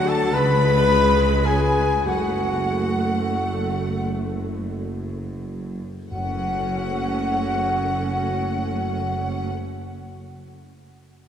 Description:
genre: classical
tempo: 28-39 BPM (dotted quarters)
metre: 6/8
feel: rubato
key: F# minor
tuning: A4 = 443 Hz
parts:
  - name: clear chamber violin section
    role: melody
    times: 0.0-9.5 s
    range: F#5 to B5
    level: -34 LUFS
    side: left 2 dB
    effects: none
  - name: clear studio violin section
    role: second line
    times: 0.0-9.5 s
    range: F#5 to B5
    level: -31 LUFS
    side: left 3 dB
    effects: none
  - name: mellow flute section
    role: second line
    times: 0.0-9.5 s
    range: F#5 to B5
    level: -28 LUFS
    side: left 1 dB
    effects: none
  - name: clear studio viola section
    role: accompaniment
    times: 0.0-9.5 s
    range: F#3 to C#4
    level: -29 LUFS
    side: right 2 dB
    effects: none
  - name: mellow French horn section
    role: sustained chords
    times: 0.0-9.5 s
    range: F#4 to B4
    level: -28 LUFS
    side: left 4 dB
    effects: none
  - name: warm trumpet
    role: stabs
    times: 0.0-9.5 s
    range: F#4 to B4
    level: -27 LUFS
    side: left 4 dB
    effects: none
  - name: clear chamber double bass section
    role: bass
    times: 0.0-9.5 s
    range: F#1 to D2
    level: -30 LUFS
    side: right 2 dB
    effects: none
  - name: clear studio cello section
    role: bass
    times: 0.0-9.5 s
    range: F#2 to D3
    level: -30 LUFS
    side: right 1 dB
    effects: none
  - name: mellow tuba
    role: bass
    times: 0.0-9.5 s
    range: F#1 to D2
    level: -29 LUFS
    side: right 2 dB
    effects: none
  - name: timpani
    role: percussion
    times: 6.1-9.5 s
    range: F#2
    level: -38 LUFS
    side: left 2 dB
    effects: none
room: wet church reverb, RT60 3.6 s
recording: recorded in a church or concert hall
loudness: -20 LUFS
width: side -8 dB against mid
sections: 0.0-6.1 A section; 6.1-9.9 B section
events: slowing down 0.0-6.1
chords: 0.3 C#5; 2.1 F#m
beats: 0.34 | 2.06 4.06 | 6.11 8.02

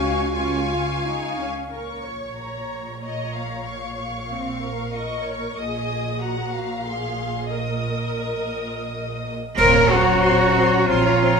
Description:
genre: cinematic, emotional film score for orchestra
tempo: 85-95 BPM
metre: 3/4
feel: rubato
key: Bb minor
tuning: A4 = 442 Hz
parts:
  - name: warm symphonic violin section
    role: melody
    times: 0.0-11.4 s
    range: Bb5 to Eb6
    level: -32 LUFS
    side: left 2 dB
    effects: none
  - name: mellow clarinet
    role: second line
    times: 0.0-1.4, 9.6-11.4 s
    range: F4 to Db5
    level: -27 LUFS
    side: left 2 dB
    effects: none
  - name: warm symphonic violin section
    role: second line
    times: 0.0-11.4 s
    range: C5 to Ab5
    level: -29 LUFS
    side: left 4 dB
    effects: none
  - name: warm studio viola section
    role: accompaniment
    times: 0.0-11.4 s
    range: C4 to Db5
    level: -30 LUFS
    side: right 2 dB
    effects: none
  - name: rich symphonic cello section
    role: bass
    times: 0.0-11.4 s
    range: Db2 to Bb4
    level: -24 LUFS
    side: right 1 dB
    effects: none
  - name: rich symphonic double bass section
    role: bass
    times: 0.0-11.4 s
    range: Bb1 to Db2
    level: -29 LUFS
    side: right 5 dB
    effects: none
  - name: silver concert flute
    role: second line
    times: 9.6-11.4 s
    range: Bb5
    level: -26 LUFS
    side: left 4 dB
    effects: none
  - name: warm oboe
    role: second line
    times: 9.6-11.4 s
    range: F4 to Bb4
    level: -25 LUFS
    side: right 4 dB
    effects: none
  - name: mellow French horn section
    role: sustained chords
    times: 9.6-11.4 s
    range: F3 to Bb3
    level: -24 LUFS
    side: left 5 dB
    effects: none
  - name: clash cymbals and concert bass drum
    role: percussion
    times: 9.6-10.9 s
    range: none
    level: -29 LUFS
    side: equal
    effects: none
room: moderate scoring stage reverb, RT60 1.5 s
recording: minimal, uncompressed stereo recording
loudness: -20 LUFS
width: side -5 dB against mid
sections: 0.0-1.7 A section; 1.7-9.6 B section; 9.6-11.4 C section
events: band accent 9.6-10.2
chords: 0.0 Db; 1.7 Bbm; 5.6 Absus2/Bb; 9.6 Bbmadd9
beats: 0.34 1.03 | 1.72 2.37 3.02 | 3.65 4.30 4.93 | 5.57 6.20 6.85 | 7.51 8.21 8.90 | 9.58 10.24 10.89

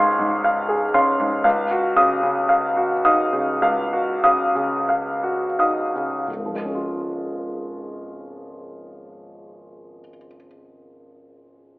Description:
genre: classical, impressionist solo piano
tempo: 40-61 BPM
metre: 4/4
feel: rubato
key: Db major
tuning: A4 = 440 Hz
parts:
  - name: clear concert grand piano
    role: solo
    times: 0.0-11.8 s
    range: Db1 to C7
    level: -18 LUFS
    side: equal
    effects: none
room: wet recital hall reverb, RT60 1.5 s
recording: telephone sound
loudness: -18 LUFS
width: side -21 dB against mid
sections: 0.0-6.3 A section; 6.3-11.1 B section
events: slowing down 0.0-6.3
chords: 0.0 Dbmaj7; 1.4 Ebm9/Db; 6.3 Db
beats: 0.43 | 1.44 2.50 3.63 4.89 | 6.27 7.47 8.66 9.88

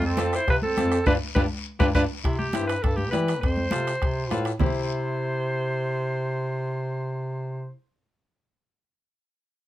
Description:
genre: latin, cumbia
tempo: 203 BPM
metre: 4/4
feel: straight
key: C major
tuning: A4 = 440 Hz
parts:
  - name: bright alto saxophone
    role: melody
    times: 0.0-7.7 s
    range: E4 to C5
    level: -28 LUFS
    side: right 1 dB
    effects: none
  - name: warm trumpet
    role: second line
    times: 0.0-2.0 s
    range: C4 to F4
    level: -32 LUFS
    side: right 3 dB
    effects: none
  - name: warm bass clarinet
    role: bass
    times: 0.0-7.7 s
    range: F2 to E3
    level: -28 LUFS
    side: right 1 dB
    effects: none
  - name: congas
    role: percussion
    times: 0.0-4.7 s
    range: none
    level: -32 LUFS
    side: right 1 dB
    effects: none
  - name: semi-hollow electric guitar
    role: accompaniment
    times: 0.2-7.8 s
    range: C4 to D5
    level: -30 LUFS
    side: left 5 dB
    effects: none
  - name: bombo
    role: percussion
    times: 0.2-4.7 s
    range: none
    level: -27 LUFS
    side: left 1 dB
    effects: none
  - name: cowbell and timbales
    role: percussion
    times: 0.2-4.7 s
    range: none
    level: -36 LUFS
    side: right 7 dB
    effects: none
  - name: guiro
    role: percussion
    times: 0.2-4.7 s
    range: none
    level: -41 LUFS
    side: left 6 dB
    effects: none
room: light reverb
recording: none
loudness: -23 LUFS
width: side -14 dB against mid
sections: 0.0-2.2 A section; 2.2-4.6 B section; 4.6-7.0 C section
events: band accent 1.1-2.2; drum fill 1.6-2.2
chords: 0.0 F; 1.1 G7(no3); 2.2 C; 3.4 F; 4.6 C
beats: 0.18 0.47 0.77 | 1.06 1.35 1.65 1.94 | 2.24 2.53 2.83 3.12 | 3.42 3.71 4.01 4.30 | 4.60 4.89 5.19 5.48 | 5.78 6.07 6.37 6.66

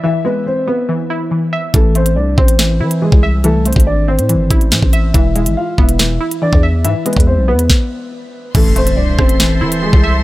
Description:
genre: hip hop, drill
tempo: 141 BPM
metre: 4/4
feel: half-time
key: A harmonic minor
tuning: A4 = 439 Hz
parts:
  - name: dark concert grand piano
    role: melody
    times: 0.0-10.0 s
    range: G#3 to F5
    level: -19 LUFS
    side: left 1 dB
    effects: tape echo
  - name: glassy wavetable pluck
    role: accompaniment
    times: 0.0-10.2 s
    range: E3 to E5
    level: -19 LUFS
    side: equal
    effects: chorus
  - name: growling 808-style bass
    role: bass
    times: 1.7-10.2 s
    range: E1 to E3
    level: -14 LUFS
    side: equal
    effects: none
  - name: drill drum kit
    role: drums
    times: 1.7-10.0 s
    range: crash cymbal, hi-hat, kick drum, rim click, snare drum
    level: -12 LUFS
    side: equal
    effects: none
  - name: warm chamber string section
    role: sustained chords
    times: 8.5-10.2 s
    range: A4 to C6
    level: -22 LUFS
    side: equal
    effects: none
  - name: impact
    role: sound effects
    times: 8.6-10.2 s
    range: none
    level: -22 LUFS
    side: equal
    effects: none
room: little or no reverb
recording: none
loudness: -11 LUFS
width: side -17 dB against mid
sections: 0.0-8.5 A section; 8.5-10.2 B section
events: stop 7.7-8.5; impact 8.5-10.2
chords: 0.0 E; 1.7 Am; 5.1 E; 8.5 Am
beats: | 0.04 0.46 0.89 1.31 | 1.74 2.17 2.59 3.02 | 3.44 3.87 4.29 4.72 | 5.14 5.57 5.99 6.42 | 6.84 7.27 7.70 8.12 | 8.55 8.97 9.40 9.82

